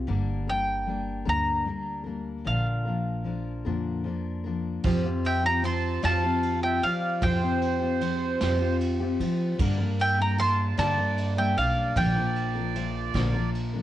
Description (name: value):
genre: acoustic folk duo or small band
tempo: 51 BPM (dotted quarters)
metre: 6/8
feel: straight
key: unclear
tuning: A4 = 438 Hz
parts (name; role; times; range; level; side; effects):
- picked steel-string acoustic guitar; accompaniment; 0.0-13.8 s; G2 to Bb4; -30 LUFS; left 5 dB; cassette tape
- upright bass; bass; 0.0-13.8 s; G1 to F3; -29 LUFS; right 1 dB; none
- bowl-back mandolin; melody; 0.5-13.5 s; F5 to C6; -27 LUFS; equal; none
- picked twelve-string acoustic guitar; arpeggios; 4.8-13.8 s; F3 to F4; -33 LUFS; right 6 dB; cassette tape
- vintage brush drum kit; drums; 4.8-13.7 s; crash cymbal, kick drum, ride cymbal, snare drum; -35 LUFS; right 1 dB; cassette tape
- accordion; second line; 5.3-13.5 s; C5 to A5; -34 LUFS; right 8 dB; cassette tape
room: light reverb, small room ambience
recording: home recording on cassette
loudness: -24 LUFS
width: side -13 dB against mid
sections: 0.0-4.8 A section; 4.8-13.8 B section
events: none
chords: 0.1 Gm; 2.5 Bb; 4.8 Fsus2; 9.6 Gm; 12.0 Bb